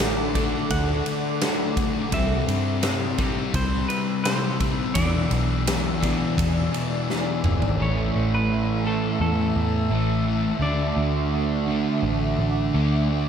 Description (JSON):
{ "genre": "rock, shoegaze and dream pop", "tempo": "85 BPM", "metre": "4/4", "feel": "straight", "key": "unclear", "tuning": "A4 = 440 Hz", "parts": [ { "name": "semi-hollow electric guitar", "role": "melody", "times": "0.0-12.0 s", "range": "A4 to G#5", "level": "-32 LUFS", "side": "left 1 dB", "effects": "analog delay" }, { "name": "ethereal airy pad", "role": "sustained chords", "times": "0.0-13.3 s", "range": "C4 to E6", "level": "-32 LUFS", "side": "equal", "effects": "ensemble chorus, built-in reverb" }, { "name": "crunchy overdriven guitar", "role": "riff", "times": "0.0-13.3 s", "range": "E2 to D4", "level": "-31 LUFS", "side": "equal", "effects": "analog chorus" }, { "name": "overdriven semi-hollow guitar", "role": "riff", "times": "0.0-13.3 s", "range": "A2 to G#4", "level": "-28 LUFS", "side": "right 7 dB", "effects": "reverse reverb" }, { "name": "thick fuzz guitar", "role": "riff", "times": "0.0-13.3 s", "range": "E2 to D4", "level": "-28 LUFS", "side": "left 8 dB", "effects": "distortion, lush chorus" }, { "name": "vintage muted picked electric bass", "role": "bass", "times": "0.0-13.3 s", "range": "F#1 to G2", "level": "-26 LUFS", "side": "equal", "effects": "none" }, { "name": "huge arena drum kit", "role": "drums", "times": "0.0-7.8 s", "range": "kick drum, ride cymbal, snare drum, toms", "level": "-27 LUFS", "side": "equal", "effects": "none" } ], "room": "moderate plate reverb, RT60 2.2 s", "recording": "dreamy mix soaked in reverb", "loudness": "-21 LUFS", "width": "side -8 dB against mid", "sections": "0.0-7.8 A section; 7.8-13.3 B section", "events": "drum fill 7.1-7.8", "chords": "0.0 D; 2.1 Cmaj7; 5.0 E7; 7.8 A; 10.6 D", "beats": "0.70 1.41 | 2.12 2.83 3.53 4.24 | 4.95 5.66 6.37 7.08 | 7.79 8.49 9.20 9.91 | 10.62 11.33 12.04 12.75" }